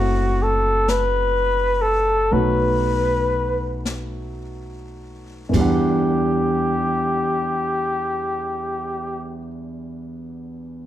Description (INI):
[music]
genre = jazz ballad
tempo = 34-44 BPM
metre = 4/4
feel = swing 66% on 8ths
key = E minor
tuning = A4 = 440 Hz
[part]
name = warm flugelhorn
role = melody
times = 0.0-9.4 s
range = F#4 to B4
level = -21 LUFS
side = left 1 dB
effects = none
[part]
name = warm grand piano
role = accompaniment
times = 0.0-10.9 s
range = E2 to F#5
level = -25 LUFS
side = right 1 dB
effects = none
[part]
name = upright bass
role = bass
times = 0.0-9.4 s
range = F#1 to E2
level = -26 LUFS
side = equal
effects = none
[part]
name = jazz brush drum kit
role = drums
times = 0.9-6.3 s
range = brushed snare drum, china cymbal, hi-hat, kick drum, snare drum, toms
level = -28 LUFS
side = left 1 dB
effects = none
[sound]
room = moderate large studio reverb, RT60 1.3 s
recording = none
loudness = -18 LUFS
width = side -12 dB against mid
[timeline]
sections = 0.0-5.5 A section; 5.5-10.9 B section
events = slowing down 0.0-5.5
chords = 0.0 F#m7b5; 2.3 B7; 5.5 Em7